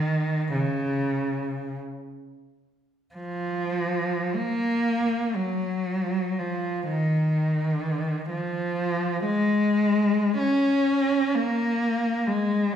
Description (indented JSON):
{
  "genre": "classical, free, expressive piece for unaccompanied cello",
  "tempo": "free time",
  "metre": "none",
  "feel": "none",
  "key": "Bb minor from 3.2 s",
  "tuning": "A4 = 440 Hz",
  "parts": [
    { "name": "rich cello", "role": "solo", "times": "0.0-12.8 s", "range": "Db3 to Db4", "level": "-23 LUFS", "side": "equal", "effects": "none" }
  ],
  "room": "wet recital hall reverb, RT60 1.3 s",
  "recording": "recorded in a church or concert hall",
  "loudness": "-23 LUFS",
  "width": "side -9 dB against mid",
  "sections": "0.0-3.2 A section; 3.2-12.8 B section",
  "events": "none",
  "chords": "none",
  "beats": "free time"
}